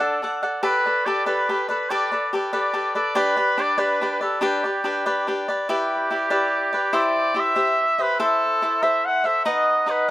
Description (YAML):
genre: mexican folk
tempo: 95 BPM (dotted quarters)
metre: 6/8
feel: straight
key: G major, E minor from 5.7 s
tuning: A4 = 440 Hz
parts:
  - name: warm trumpet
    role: melody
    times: 0.0-10.1 s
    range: G4 to F#5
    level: -22 LUFS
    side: equal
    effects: slapback echo
  - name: cavaquinho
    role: accompaniment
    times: 0.0-10.1 s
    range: D4 to F#5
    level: -22 LUFS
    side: left 1 dB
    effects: slapback echo
room: little or no reverb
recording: recorded outdoors, with no room sound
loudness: -19 LUFS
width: side -15 dB against mid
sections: 0.0-5.7 A section; 5.7-10.1 B section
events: none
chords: 0.0 D; 0.6 Gadd9; 3.2 G; 5.7 Em7; 6.9 C; 8.2 Am; 9.5 B